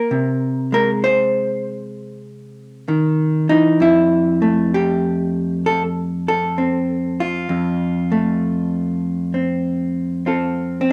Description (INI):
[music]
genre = solo jazz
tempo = 65 BPM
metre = 4/4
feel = swing 67% on 8ths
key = F major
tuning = A4 = 442 Hz
[part]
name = vintage hollow-body jazz guitar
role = solo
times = 0.0-10.9 s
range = F2 to C5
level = -19 LUFS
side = equal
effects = none
[sound]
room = moderate studio reverb, RT60 0.7 s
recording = dark, warm production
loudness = -19 LUFS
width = mono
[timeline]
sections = 0.0-10.9 A section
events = none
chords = 0.1 C(#5, no3); 3.8 Fmaj9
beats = | 0.10 1.03 1.95 2.87 | 3.79 4.71 5.64 6.56 | 7.48 8.41 9.33 10.26